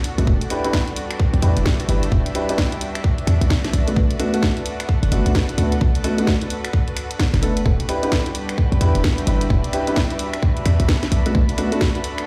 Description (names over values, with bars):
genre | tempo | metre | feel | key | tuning
UK garage, two-step garage | 130 BPM | 4/4 | swing 61% on 16ths | E minor | A4 = 440 Hz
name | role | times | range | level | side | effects
muted chamber violin section | sustained chords | 0.0-12.3 s | D4 to B4 | -34 LUFS | equal | sidechain pumping
garage drum kit | drums | 0.0-12.3 s | finger snaps, hi-hat, snare drum | -29 LUFS | equal | none
airy breathy pad | texture | 0.0-12.3 s | G3 to B5 | -33 LUFS | equal | chorus, sidechain pumping
dark grand piano | stabs | 0.2-11.8 s | A3 to B4 | -26 LUFS | equal | delay
short 808-style bass | bass | 0.2-11.5 s | E1 to E2 | -20 LUFS | equal | none
electronic kick drum | drums | 0.3-11.9 s | none | -21 LUFS | equal | none
room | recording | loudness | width
light reverb | played on a big sound system in a bare room, large studio reverb | -19 LUFS | mono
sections
0.0-12.3 A section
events
none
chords
0.3 Em7; 3.7 Bm7; 7.7 Em7; 11.1 Bm7